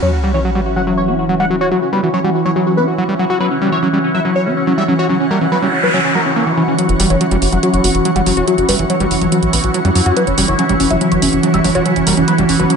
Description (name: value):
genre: psychedelic trance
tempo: 142 BPM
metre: 4/4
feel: straight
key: unclear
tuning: A4 = 438 Hz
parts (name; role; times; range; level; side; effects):
- wide unison lead; melody; 0.0-12.8 s; C#4 to F#5; -18 LUFS; left 1 dB; phaser, ping-pong delay
- overtone-sweeping drone; sustained chords; 0.0-12.8 s; E3 to E4; -19 LUFS; right 2 dB; chorus, built-in reverb, phaser
- overdriven acid bass; riff; 0.0-12.8 s; E3 to F#4; -18 LUFS; equal; distortion, auto-pan, ping-pong delay
- sub drop and noise sweep; sound effects; 0.0-1.7, 5.4-6.8 s; none; -20 LUFS; equal; none
- granular cloud pad; texture; 0.0-12.8 s; C#4 to C#6; -21 LUFS; left 1 dB; built-in reverb
- electronic hi-hat; drums; 6.8-12.8 s; none; -21 LUFS; right 4 dB; overdrive
- tight sequencer bass; bass; 6.9-12.7 s; E1 to F#2; -19 LUFS; equal; none
room: moderate lush hall reverb, RT60 2.4 s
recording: nothing above 10.6 kHz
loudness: -12 LUFS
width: side -6 dB against mid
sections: 0.0-6.8 A section; 6.8-12.8 B section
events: impact 0.0-1.7; noise sweep 5.4-6.8; build-up 6.8-12.8; filter sweep on analog synth lead 6.8-12.8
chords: 0.0 F#5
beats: | 0.03 0.45 0.87 1.29 | 1.72 2.14 2.56 2.98 | 3.40 3.83 4.25 4.67 | 5.10 5.52 5.94 6.36 | 6.79 7.21 7.63 8.05 | 8.48 8.90 9.32 9.74 | 10.17 10.59 11.01 11.43 | 11.86 12.28 12.70